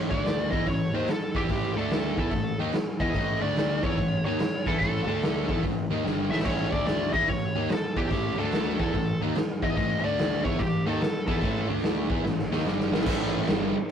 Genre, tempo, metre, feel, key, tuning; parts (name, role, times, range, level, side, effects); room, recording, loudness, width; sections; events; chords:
blues rock power trio and southern rock; 145 BPM; 4/4; swing 65% on 8ths; A mixolydian; A4 = 440 Hz
fuzz guitar; riff; 0.0-13.7 s; G2 to E4; -29 LUFS; equal; distortion
fuzz picked electric bass; bass; 0.0-13.7 s; G1 to E2; -33 LUFS; equal; overdrive
fuzz lead guitar; melody; 0.1-11.7 s; G4 to E5; -30 LUFS; left 1 dB; wah, distortion
raw garage drum kit; drums; 0.1-13.6 s; crash cymbal, hi-hat, kick drum, snare drum; -28 LUFS; equal
light reverb; rough rehearsal-room recording, warm saturation; -24 LUFS; side -8 dB against mid
0.0-13.1 A section
drum fill 6.0-6.5, 12.2-13.1
0.0 D5; 0.5 A5; 1.7 D5; 2.1 A5; 3.4 D5; 3.8 A; 5.0 D5; 5.4 A5; 6.7 D5; 7.1 A; 8.3 D5; 8.7 A5; 10.0 D5; 10.4 A5; 11.6 D5; 12.0 A5